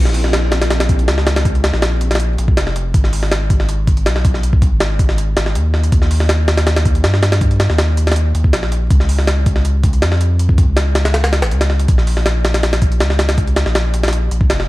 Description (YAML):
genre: drum and bass, jungle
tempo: 161 BPM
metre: 4/4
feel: straight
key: Bb phrygian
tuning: A4 = 440 Hz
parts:
  - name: saturated sub bass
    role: bass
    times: 0.0-14.7 s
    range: F1 to G2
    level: -15 LUFS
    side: equal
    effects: tube saturation
  - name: jungle sampler-style drum kit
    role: drums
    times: 0.1-14.7 s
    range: hi-hat, kick drum, snare drum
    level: -15 LUFS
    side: equal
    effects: none
room: little or no reverb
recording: vinyl crackle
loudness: -12 LUFS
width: side -18 dB against mid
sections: 0.0-14.7 A section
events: none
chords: none